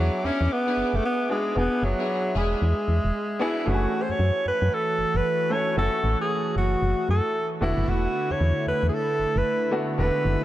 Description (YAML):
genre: R&B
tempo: 114 BPM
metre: 4/4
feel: swing 62% on 16ths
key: F# minor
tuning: A4 = 440 Hz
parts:
  - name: clear alto saxophone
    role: melody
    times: 0.0-10.4 s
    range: F#3 to C#5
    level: -25 LUFS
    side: equal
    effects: none
  - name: clear baby grand piano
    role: accompaniment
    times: 0.0-10.4 s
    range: G#3 to A4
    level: -32 LUFS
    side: equal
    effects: none
  - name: brassy analog pad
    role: sustained chords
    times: 0.0-10.4 s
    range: D3 to D6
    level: -31 LUFS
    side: right 1 dB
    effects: chorus
  - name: warm studio string section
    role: stabs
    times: 0.0-3.6 s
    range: B3 to G#4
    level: -35 LUFS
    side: left 1 dB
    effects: none
  - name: solid FM bass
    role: bass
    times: 0.0-10.4 s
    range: E1 to F#2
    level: -24 LUFS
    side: equal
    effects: none
room: moderate lush hall reverb, RT60 2.6 s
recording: dark, warm production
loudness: -22 LUFS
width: side -14 dB against mid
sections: 0.0-3.7 A section; 3.7-10.4 A section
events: break 3.1-3.7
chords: 0.0 E7; 3.7 F#m7; 7.6 E7sus4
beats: 0.51 1.03 | 1.56 2.08 2.61 3.14 | 3.66 4.19 4.72 5.24 | 5.77 6.29 6.82 7.35 | 7.87 8.40 8.93 9.45 | 9.98